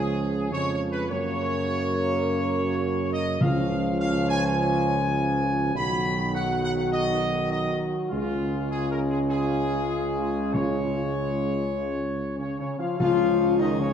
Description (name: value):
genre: classical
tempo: 102 BPM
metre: 4/4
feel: straight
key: Db mixolydian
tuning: A4 = 440 Hz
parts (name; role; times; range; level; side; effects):
- clear trumpet section; melody; 0.0-13.9 s; F4 to Cb6; -29 LUFS; equal; none
- clear trombone section; sustained chords; 0.0-13.9 s; Db3 to Ab3; -31 LUFS; right 3 dB; none
- warm French horn section; sustained chords; 0.0-13.9 s; F3 to Gb4; -29 LUFS; left 4 dB; none
- warm tuba; bass; 0.0-13.9 s; Cb2 to Gb2; -28 LUFS; right 2 dB; none
- timpani; percussion; 3.4-4.2, 10.5-13.9 s; Db3; -30 LUFS; left 1 dB; none
- pipe organ, plenum; sustained chords; 13.0-13.9 s; Db3 to Db5; -29 LUFS; right 1 dB; none
room: wet scoring stage reverb, RT60 2.1 s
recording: dark, warm production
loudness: -23 LUFS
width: side -8 dB against mid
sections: 0.0-13.0 A section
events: none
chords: 0.0 Db; 1.1 Gb; 3.4 Db; 5.8 Cb; 8.1 Db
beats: 0.51 | 1.09 1.67 2.25 2.83 | 3.41 3.99 4.58 5.17 | 5.75 6.34 6.92 7.52 | 8.11 8.71 9.31 9.91 | 10.54 11.16 11.77 12.38 | 13.01 13.61